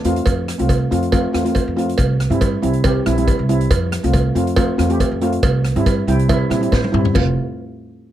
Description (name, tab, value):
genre	calypso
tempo	139 BPM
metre	4/4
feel	straight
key	F major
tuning	A4 = 443 Hz
part	upright bass	bass	0.0-7.4 s	F1 to Bb2	-20 LUFS	equal	none
part	street-band drum kit	drums	0.0-7.3 s	crash cymbal, hi-hat, kick drum, rim click, snare drum, toms	-21 LUFS	left 1 dB	none
part	steel pan	accompaniment	0.1-7.3 s	G3 to G5	-19 LUFS	equal	none
part	cowbell	percussion	0.3-7.4 s	none	-24 LUFS	right 6 dB	none
room	little or no reverb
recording	dry, close 1970s-style studio recording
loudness	-15 LUFS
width	side -12 dB against mid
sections	0.3-7.2 A section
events	steel pan fill 5.9-7.2; drum fill 6.7-7.2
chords	0.3 Fmaj7; 2.0 C7; 3.7 Fmaj7; 5.4 C; 7.2 F